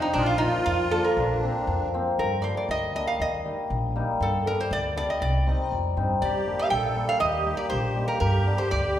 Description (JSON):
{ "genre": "klezmer", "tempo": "119 BPM", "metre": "2/4", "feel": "straight", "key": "G minor", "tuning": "A4 = 440 Hz", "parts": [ { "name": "metal-body resonator slide guitar", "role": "melody", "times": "0.0-9.0 s", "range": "D4 to G5", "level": "-27 LUFS", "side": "right 2 dB", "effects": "none" }, { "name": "musette accordion", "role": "second line", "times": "0.0-1.9, 6.2-9.0 s", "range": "D4 to A4", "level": "-29 LUFS", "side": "equal", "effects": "none" }, { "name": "cimbalom", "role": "accompaniment", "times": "0.0-9.0 s", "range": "F3 to Eb4", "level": "-28 LUFS", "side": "left 2 dB", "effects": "none" }, { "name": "upright bass", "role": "bass", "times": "0.2-9.0 s", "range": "G1 to G2", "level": "-28 LUFS", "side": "equal", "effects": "none" } ], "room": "wet recital hall reverb, RT60 1.5 s", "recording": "heard from further back in the room", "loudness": "-23 LUFS", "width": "side -11 dB against mid", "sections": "0.0-2.2 A section; 2.2-9.0 B section", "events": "none", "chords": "0.2 Bb; 2.2 Gm; 3.2 Eb; 4.2 G; 5.2 Cm; 6.2 Gm; 7.2 Eb; 8.2 G", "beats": "| 0.16 0.67 | 1.17 1.68 | 2.19 2.69 | 3.20 3.70 | 4.21 4.71 | 5.21 5.72 | 6.22 6.72 | 7.22 7.72 | 8.22 8.72" }